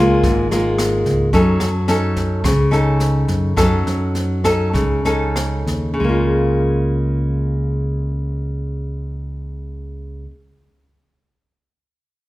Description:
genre	bossa nova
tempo	93-110 BPM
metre	4/4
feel	straight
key	Db major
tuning	A4 = 440 Hz
part	nylon-string guitar	accompaniment	0.0-10.4 s	Ab2 to A4	-18 LUFS	left 1 dB	none
part	fingered electric bass	bass	0.0-10.3 s	Ab1 to Gb2	-20 LUFS	equal	none
part	jazz brush drum kit	drums	0.2-5.8 s	kick drum, rim click, snare drum	-24 LUFS	equal	none
room	moderate recital hall reverb, RT60 1.5 s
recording	recorded in a church or concert hall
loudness	-16 LUFS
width	side -17 dB against mid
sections	0.0-6.0 A section; 6.0-11.1 B section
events	slowing down 1.3-6.0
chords	0.0 Db6; 1.3 Gbm6; 6.0 Db6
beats	0.24 0.79 | 1.33 1.88 2.43 2.99 | 3.56 4.15 4.74 5.36 | 5.99 6.63 7.28 7.92 | 8.56 9.21 9.85

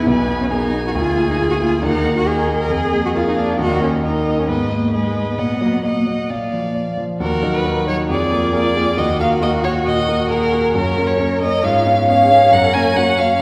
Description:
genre	quick classical-period movement for piano quartet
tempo	136 BPM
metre	4/4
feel	straight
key	Eb minor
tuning	A4 = 436 Hz
part	rich violin	melody	0.0-13.4 s	Bb4 to Ab5	-22 LUFS	equal	none
part	warm cello	second line	0.0-13.4 s	Ab3 to Bb4	-24 LUFS	equal	none
part	warm violin	second line	0.0-13.4 s	Db4 to Eb5	-25 LUFS	equal	none
part	warm concert grand piano	accompaniment	0.0-13.4 s	Cb2 to Eb5	-22 LUFS	equal	none
room	wet concert hall reverb, RT60 1.9 s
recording	recorded in a church or concert hall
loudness	-17 LUFS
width	mono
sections	0.0-7.2 A section; 7.2-13.4 B section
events	none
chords	0.1 Abm/Cb; 1.0 Bb7/D; 1.8 Ebm; 2.7 Bb5/F; 3.6 Eb5; 4.5 Abm; 5.4 Ebm/Bb; 6.3 Bb; 7.2 Ebm; 8.1 Bb7/F; 9.0 Ebm; 10.8 Gb; 11.6 Db7/Ab; 12.5 Gb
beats	| 0.07 0.51 0.95 1.39 | 1.83 2.27 2.71 3.15 | 3.60 4.04 4.49 4.93 | 5.39 5.84 6.30 6.75 | 7.20 7.65 8.09 8.54 | 8.98 9.42 9.86 10.30 | 10.75 11.20 11.64 12.08 | 12.52 12.96 13.40

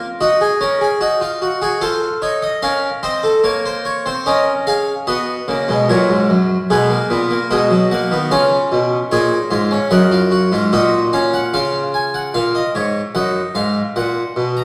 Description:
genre	classical, baroque-style 4-part fugue for harpsichord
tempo	74 BPM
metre	4/4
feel	straight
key	Bb minor, F# major from 5.1 s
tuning	A4 = 440 Hz
part	harpsichord	solo	0.0-14.6 s	F#2 to A#5	-17 LUFS	equal	none
room	wet recital hall reverb, RT60 1.5 s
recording	heard from further back in the room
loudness	-17 LUFS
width	mono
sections	0.0-5.1 A section; 5.1-11.5 B section; 11.5-14.6 C section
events	none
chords	0.2 Ebm; 1.8 F7; 3.4 Bbm; 5.1 F#; 6.7 B; 8.3 C#7; 9.9 F#; 11.5 C#; 13.2 D#m/F#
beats	0.21 1.01 | 1.82 2.63 3.44 4.26 | 5.08 5.89 6.70 7.52 | 8.32 9.11 9.91 10.72 | 11.53 12.35 13.15 13.96

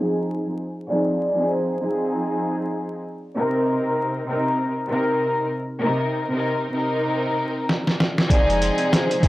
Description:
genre	hip hop, boom-bap hip-hop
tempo	97 BPM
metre	4/4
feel	swing 58% on 16ths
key	C minor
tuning	A4 = 440 Hz
part	dark studio string section	accompaniment	0.0-9.3 s	C3 to Bb4	-22 LUFS	equal	cassette tape, high-pass filter, low-pass filter
part	vibraphone with soft mallets	melody	0.9-2.3, 8.3-9.3 s	Ab4 to D5	-26 LUFS	equal	high-pass filter, low-pass filter, tape echo
part	trip hop sampler-style drum kit	drums	7.7-9.3 s	hi-hat, kick drum, snare drum	-19 LUFS	equal	overdrive
part	hollow soft pad	sustained chords	8.3-9.3 s	C3 to Eb4	-31 LUFS	right 1 dB	chorus, high-pass filter, low-pass filter
part	soft dub sub bass	bass	8.3-9.3 s	F1 to Ab1	-26 LUFS	equal	none
room	light reverb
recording	dry, gritty hardware recording, transformer saturation, vinyl crackle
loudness	-20 LUFS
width	side -17 dB against mid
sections	0.0-8.3 A section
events	filter sweep 0.0-8.3; drum fill 7.7-8.3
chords	0.0 Fm7; 3.4 Cm7; 8.3 Fm7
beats	0.26 | 0.88 1.50 2.12 2.73 | 3.35 3.97 4.59 5.21 | 5.83 6.45 7.06 7.68 | 8.30 8.92

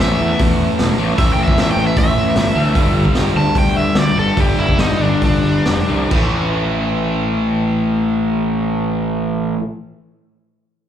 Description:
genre	punk rock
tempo	129-153 BPM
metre	4/4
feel	straight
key	unclear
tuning	A4 = 443 Hz
part	crunchy overdriven guitar	melody	0.0-6.1 s	D4 to A5	-20 LUFS	equal	none
part	distorted electric guitar	riff	0.0-9.6 s	G2 to A3	-21 LUFS	left 11 dB	distortion, slapback echo
part	distorted electric guitar	riff	0.0-9.6 s	G2 to A3	-21 LUFS	right 9 dB	distortion
part	fuzz picked electric bass	bass	0.0-9.5 s	E1 to E2	-19 LUFS	equal	overdrive
part	raw garage drum kit	drums	0.0-6.2 s	crash cymbal, hi-hat, kick drum, snare drum	-19 LUFS	equal	none
room	studio reverb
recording	live gig heard through the venue's PA, club reverb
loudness	-14 LUFS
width	side -10 dB against mid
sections	0.0-6.1 A section; 6.1-9.8 B section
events	overdriven electric guitar solo 0.0-6.1; slowing down 2.8-6.1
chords	0.0 A5; 2.8 G5; 6.1 A5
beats	0.00 0.39 0.79 | 1.18 1.57 1.97 2.36 | 2.76 3.15 3.55 3.96 | 4.37 4.79 5.22 5.66 | 6.12 6.58 7.04 7.51 | 7.97 8.44 8.90 9.36

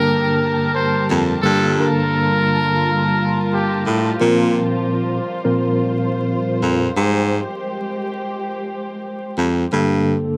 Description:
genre	hip hop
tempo	87 BPM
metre	4/4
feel	swing 60% on 16ths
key	G minor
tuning	A4 = 440 Hz
part	trumpet with metal mute	melody	0.0-3.8 s	G4 to C5	-24 LUFS	equal	high-pass filter, low-pass filter, tape echo
part	tine electric piano	accompaniment	0.0-10.4 s	G2 to Bb4	-22 LUFS	equal	medium tremolo, high-pass filter, low-pass filter
part	dark studio string section	sustained chords	0.0-9.7 s	G3 to A5	-26 LUFS	equal	high-pass filter, low-pass filter
part	bright baritone saxophone	bass	1.1-10.2 s	F2 to Bb2	-20 LUFS	equal	none
room	wet huge ambient reverb, RT60 7.8 s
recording	dreamy mix soaked in reverb, vinyl crackle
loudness	-19 LUFS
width	mono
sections	0.0-9.7 A section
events	break 7.0-9.7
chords	0.0 Gmadd9; 4.2 Bbsus2; 7.0 Abmaj7; 9.7 Gmadd9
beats	0.06 0.75 | 1.44 2.13 2.82 3.51 | 4.20 4.89 5.58 6.27 | 6.96 7.65 8.34 9.03 | 9.72

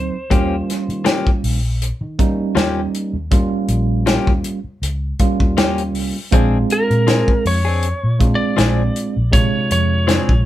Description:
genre	straight-eighth soul blues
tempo	80 BPM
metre	4/4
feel	swing 54% on 16ths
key	Eb mixolydian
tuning	A4 = 440 Hz
part	lightly driven lead guitar	melody	0.0-1.0, 6.7-10.5 s	Bb4 to D5	-22 LUFS	equal	none
part	tine electric piano	accompaniment	0.0-10.5 s	C3 to F4	-21 LUFS	right 4 dB	medium stereo tremolo
part	vintage muted fingered electric bass	bass	0.0-10.4 s	Bb1 to Eb3	-20 LUFS	equal	none
part	direct-recorded clean electric guitar	stabs	0.3-10.3 s	F3 to Ab4	-21 LUFS	left 6 dB	none
part	warm soul drum kit	drums	0.3-10.4 s	hi-hat, kick drum, snare drum	-18 LUFS	equal	none
room	light reverb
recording	band playing live in one room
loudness	-15 LUFS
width	side -13 dB against mid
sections	0.0-10.5 A section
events	none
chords	0.3 Eb9; 6.3 Bb9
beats	| 0.31 1.06 1.81 2.56 | 3.32 4.07 4.82 5.57 | 6.33 7.08 7.83 8.58 | 9.33 10.09

